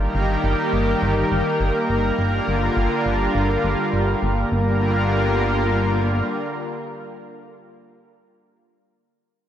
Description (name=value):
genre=synthwave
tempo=103 BPM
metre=4/4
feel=straight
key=unclear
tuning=A4 = 438 Hz
part: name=lush unison pad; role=sustained chords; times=0.0-7.6 s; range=D3 to Bb4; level=-21 LUFS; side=equal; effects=chorus
part: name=chorused synth bass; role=bass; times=0.0-6.2 s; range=G1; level=-22 LUFS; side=equal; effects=tube saturation
room=wet lush hall reverb, RT60 2.7 s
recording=big arena sound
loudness=-18 LUFS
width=side -10 dB against mid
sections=0.0-4.5 A section; 4.5-6.8 B section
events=none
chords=0.0 Eb/G; 2.2 Bb6/G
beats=0.44 1.02 1.60 | 2.19 2.77 3.35 3.93 | 4.52 5.10 5.68 6.26